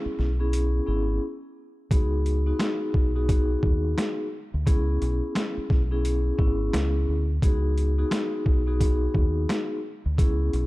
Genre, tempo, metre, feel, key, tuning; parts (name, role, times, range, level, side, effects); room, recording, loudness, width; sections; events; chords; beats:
hip hop, boom-bap hip-hop; 87 BPM; 4/4; swing 61% on 16ths; A4 = 441 Hz
vibraphone with soft mallets; accompaniment; 0.0-10.7 s; B3 to G#4; -28 LUFS; left 1 dB; high-pass filter, low-pass filter
deep dub fingered electric bass; bass; 0.1-10.7 s; G#1 to D#2; -25 LUFS; equal
boom bap sampler-style drum kit; drums; 0.2-10.7 s; hi-hat, kick drum, snare drum; -24 LUFS; equal; overdrive
digital ambience; dark, warm production; -22 LUFS; side -19 dB against mid
0.0-10.7 A section
break 0.0-1.9
0.0 C#m7; 1.9 G#m7; 4.7 C#m7; 7.4 G#m7
0.53 1.22 | 1.91 2.60 3.29 3.98 | 4.67 5.36 6.04 6.74 | 7.42 8.11 8.80 9.49 | 10.18